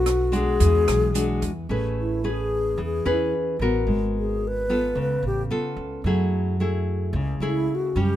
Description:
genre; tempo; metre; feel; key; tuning
bossa nova; 110 BPM; 4/4; straight; A major; A4 = 440 Hz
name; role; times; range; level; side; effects
bright reedy wooden-headed alto flute; melody; 0.0-8.2 s; E4 to B4; -24 LUFS; left 2 dB; none
nylon-string guitar; accompaniment; 0.0-8.2 s; C#3 to C#5; -26 LUFS; left 1 dB; none
upright bass; bass; 0.0-8.2 s; G#1 to F#2; -25 LUFS; right 1 dB; none
open jazz drum kit; drums; 0.1-1.5 s; hi-hat, kick drum, rim click; -30 LUFS; right 1 dB; none
room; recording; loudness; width
little or no reverb; minimal, uncompressed stereo recording; -21 LUFS; side -12 dB against mid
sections
0.0-1.7 A section; 1.7-8.2 B section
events
alto flute solo 1.7-8.2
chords
0.0 Bm9; 0.6 E9; 1.7 Amaj9; 3.9 G#m9; 5.0 C#aug7; 6.1 F#m9

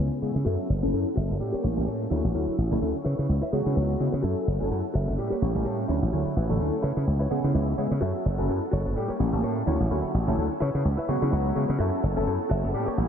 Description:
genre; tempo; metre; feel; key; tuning
house; 127 BPM; 4/4; swing 56% on 16ths; F# minor; A4 = 441 Hz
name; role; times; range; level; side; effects
funky polysynth comp; accompaniment; 0.0-13.1 s; C#3 to A5; -29 LUFS; equal; chorus, phaser, low-pass filter
phased string machine; sustained chords; 0.0-13.1 s; Bb3 to E6; -36 LUFS; right 1 dB; ensemble chorus, phaser, low-pass filter
direct-recorded clean electric guitar; riff; 0.0-13.0 s; E4 to G#5; -35 LUFS; left 1 dB; vintage 12-bit sampler grit, low-pass filter
glassy slap bass; bass; 0.0-13.1 s; F#1 to C#3; -26 LUFS; equal; low-pass filter
warm horn section; melody; 1.4-12.9 s; E3 to A4; -36 LUFS; left 1 dB; low-pass filter, diffuse ambient delay
room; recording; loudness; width
moderate huge ambient reverb, RT60 8.4 s; dreamy mix soaked in reverb; -24 LUFS; side -8 dB against mid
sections
0.0-13.1 A section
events
clean electric guitar fill 0.0-0.5, 7.1-8.0; filter sweep 0.0-13.1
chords
0.5 F#m7; 1.4 A7b9; 2.1 Dmaj9; 3.1 C#m7; 4.2 F#m7; 5.2 A7b9; 5.9 Dmaj9; 6.8 C#m7; 8.0 F#m7; 9.0 A7b9; 9.7 Dmaj9; 10.6 C#m7; 11.8 F#m7

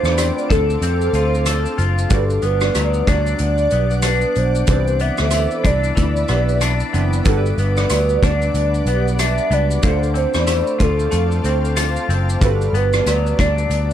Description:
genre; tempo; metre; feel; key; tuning
indie pop, bedroom pop; 93 BPM; 4/4; swing 60% on 16ths; G major; A4 = 439 Hz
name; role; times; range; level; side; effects
hollow clarinet-like synth lead; melody; 0.0-13.9 s; A4 to E5; -22 LUFS; right 1 dB; analog chorus, tape echo
vibraphone with soft mallets; second line; 0.0-13.4 s; G4 to B5; -28 LUFS; right 5 dB; ensemble chorus, tape echo
chorused retro synth keys; accompaniment; 0.0-13.9 s; E3 to D5; -30 LUFS; right 5 dB; cassette tape
electric guitar through a small old amp; accompaniment; 0.0-13.9 s; G2 to A4; -25 LUFS; left 5 dB; analog chorus, warbly pitch drift
shimmering ambient pad; sustained chords; 0.0-13.9 s; B4 to D6; -30 LUFS; left 1 dB; chorus, built-in reverb
vintage muted picked electric bass; bass; 0.0-13.9 s; F#1 to F2; -19 LUFS; equal; none
loose indie drum kit; drums; 0.0-13.9 s; hi-hat, kick drum, rim click, shaker; -21 LUFS; equal; none
tambourine; percussion; 0.2-13.2 s; none; -35 LUFS; left 14 dB; none
room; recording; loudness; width
studio ambience; none; -15 LUFS; side -10 dB against mid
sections
0.0-13.9 A section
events
none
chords
0.0 Dm7; 2.1 Gmaj7; 4.7 Cmaj9; 7.3 Gmaj7; 9.8 Dm7; 12.4 Gmaj7

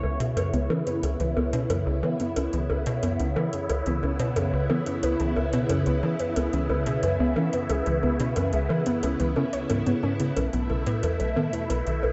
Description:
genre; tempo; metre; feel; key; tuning
ambient, sequencer-driven space music; 90 BPM; 4/4; straight; C# minor; A4 = 440 Hz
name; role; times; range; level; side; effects
phased string machine; sustained chords; 0.0-12.1 s; B2 to E4; -31 LUFS; equal; ensemble chorus, phaser
warbly dusty pluck; arpeggios; 0.0-12.1 s; B3 to C#5; -32 LUFS; equal; chorus, analog delay
tight sequencer bass; riff; 0.0-12.1 s; B1 to E3; -30 LUFS; equal; lush chorus, analog delay
electronic bongos and hi-hat; percussion; 0.0-12.1 s; none; -36 LUFS; equal; overdrive, analog delay
room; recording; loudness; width
moderate spring reverb, RT60 2.5 s; echo-heavy mix, nothing above 7.9 kHz; -26 LUFS; mono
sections
0.0-12.1 A section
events
none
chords
0.0 C#m7; 10.4 B7sus4

